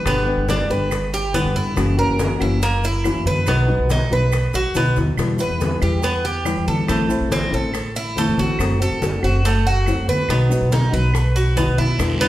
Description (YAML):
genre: latin, Cuban son and guajira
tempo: 141 BPM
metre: 4/4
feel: straight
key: unclear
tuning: A4 = 445 Hz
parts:
  - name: nylon-string guitar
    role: accompaniment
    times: 0.0-12.3 s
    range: B2 to G4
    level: -24 LUFS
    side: left 2 dB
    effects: none
  - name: Cuban tres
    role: arpeggios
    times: 0.0-12.3 s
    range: A3 to B4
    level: -22 LUFS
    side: right 2 dB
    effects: none
  - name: upright bass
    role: bass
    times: 0.0-12.3 s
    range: F#1 to E3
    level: -20 LUFS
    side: equal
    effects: none
  - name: bongos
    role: percussion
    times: 0.1-12.3 s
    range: none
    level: -30 LUFS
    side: left 5 dB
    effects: none
  - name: claves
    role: percussion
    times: 0.1-12.2 s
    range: none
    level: -35 LUFS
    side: right 3 dB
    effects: none
  - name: congas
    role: percussion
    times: 0.1-12.3 s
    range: none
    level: -28 LUFS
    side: left 1 dB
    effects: none
  - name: maracas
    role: percussion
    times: 0.1-12.3 s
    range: none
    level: -38 LUFS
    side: right 5 dB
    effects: none
  - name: guiro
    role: percussion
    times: 12.0-12.3 s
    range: none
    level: -29 LUFS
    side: right 2 dB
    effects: none
room: wet large studio reverb, RT60 1.3 s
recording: heard from further back in the room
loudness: -17 LUFS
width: side -14 dB against mid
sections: 0.0-12.0 A section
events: drum fill 4.5-5.2, 11.1-12.0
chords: 0.1 G; 1.8 F#7; 3.5 B; 5.2 Em; 6.9 Am; 8.6 F#dim; 10.3 B